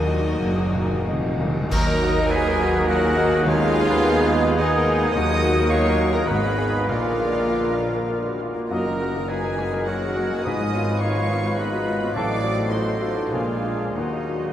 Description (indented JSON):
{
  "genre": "classical, romantic movement for piano and orchestra",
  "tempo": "90-111 BPM",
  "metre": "3/4",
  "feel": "rubato",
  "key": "Eb minor",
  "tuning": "A4 = 440 Hz",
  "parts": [
    { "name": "clear grand piano", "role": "melody", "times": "0.0-14.5 s", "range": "Eb2 to Cb5", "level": "-24 LUFS", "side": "left 2 dB", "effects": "none" },
    { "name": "rich chamber violin section", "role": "melody", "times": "0.0-14.5 s", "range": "Eb5 to Eb6", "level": "-33 LUFS", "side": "right 2 dB", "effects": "none" },
    { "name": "warm chamber violin section", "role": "second line", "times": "0.0-14.5 s", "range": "Eb4 to Eb5", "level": "-30 LUFS", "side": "right 2 dB", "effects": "none" },
    { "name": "dark chamber viola section", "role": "accompaniment", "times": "0.0-14.5 s", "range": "D3 to Eb4", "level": "-30 LUFS", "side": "right 3 dB", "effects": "none" },
    { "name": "dark chamber cello section", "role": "bass", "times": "0.0-14.5 s", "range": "Eb2 to Eb3", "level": "-31 LUFS", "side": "equal", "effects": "none" },
    { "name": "warm chamber double bass section", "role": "bass", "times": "0.0-14.5 s", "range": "F1 to Eb2", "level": "-30 LUFS", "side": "right 1 dB", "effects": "none" },
    { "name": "warm tuba", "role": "bass", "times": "0.0-14.5 s", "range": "F1 to Eb2", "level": "-33 LUFS", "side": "equal", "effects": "none" },
    { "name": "timpani", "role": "percussion", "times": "0.0-5.9 s", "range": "Eb3", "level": "-33 LUFS", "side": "equal", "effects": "none" },
    { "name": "bright concert flute", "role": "second line", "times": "1.7-14.5 s", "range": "Gb4 to Ab5", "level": "-30 LUFS", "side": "right 2 dB", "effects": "none" },
    { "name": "warm oboe", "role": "second line", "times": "1.7-14.5 s", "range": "Eb4 to Eb5", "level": "-31 LUFS", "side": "equal", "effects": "none" },
    { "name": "dark trombone section", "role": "sustained chords", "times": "1.7-14.2 s", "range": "Gb2 to Ab3", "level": "-33 LUFS", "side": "right 1 dB", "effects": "none" },
    { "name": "mellow French horn section", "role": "sustained chords", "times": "1.7-14.2 s", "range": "Bb3 to Gb4", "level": "-32 LUFS", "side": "right 1 dB", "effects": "none" },
    { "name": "clear trumpet section", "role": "stabs", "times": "1.7-14.2 s", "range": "Gb4 to Eb5", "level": "-32 LUFS", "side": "left 2 dB", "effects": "none" },
    { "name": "clash cymbals and concert bass drum", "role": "percussion", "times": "1.7-2.8 s", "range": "none", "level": "-29 LUFS", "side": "equal", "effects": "none" },
    { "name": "mellow bassoon", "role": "accompaniment", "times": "2.3-14.5 s", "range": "Bb3 to Gb4", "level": "-31 LUFS", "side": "left 2 dB", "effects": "none" }
  ],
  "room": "wet huge ambient reverb, RT60 8.0 s",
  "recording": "in a vast, echoing space",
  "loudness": "-19 LUFS",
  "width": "side -11 dB against mid",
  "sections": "0.0-1.7 A section; 1.7-14.5 B section",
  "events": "timpani fill 0.0-1.7; band accent 1.7-2.3",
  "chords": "0.0 Ebm; 3.5 Abm/Eb; 5.1 Ebm; 6.3 Abm; 6.9 Bb; 8.7 Ebm/Gb; 10.4 Fm7b5/Ab; 12.2 Adim7; 13.3 Bb7; 14.0 Ebm"
}